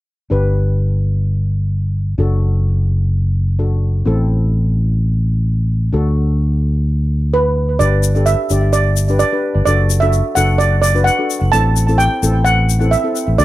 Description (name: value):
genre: calypso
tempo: 128 BPM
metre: 4/4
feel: straight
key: G major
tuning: A4 = 440 Hz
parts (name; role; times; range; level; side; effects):
- steel pan; accompaniment; 0.3-13.4 s; C4 to D5; -22 LUFS; left 3 dB; none
- fingered electric bass; bass; 0.3-13.4 s; F#1 to D2; -14 LUFS; equal; none
- steel pan; melody; 7.3-13.4 s; B4 to A5; -16 LUFS; right 3 dB; tape echo
- tube shaker; percussion; 7.8-13.4 s; none; -25 LUFS; left 17 dB; none
room: light reverb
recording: dark, warm production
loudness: -13 LUFS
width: side -16 dB against mid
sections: 0.3-7.8 A section; 7.8-13.4 B section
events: none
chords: 0.3 G; 2.2 D/F#; 4.1 Am; 5.9 D6; 7.8 G; 9.7 D/F#; 11.5 Am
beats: | 0.31 0.78 1.25 1.72 | 2.19 2.66 3.12 3.59 | 4.06 4.53 5.00 5.47 | 5.93 6.40 6.87 7.34 | 7.80 8.27 8.74 9.20 | 9.67 10.14 10.60 11.07 | 11.53 11.99 12.46 12.92 | 13.39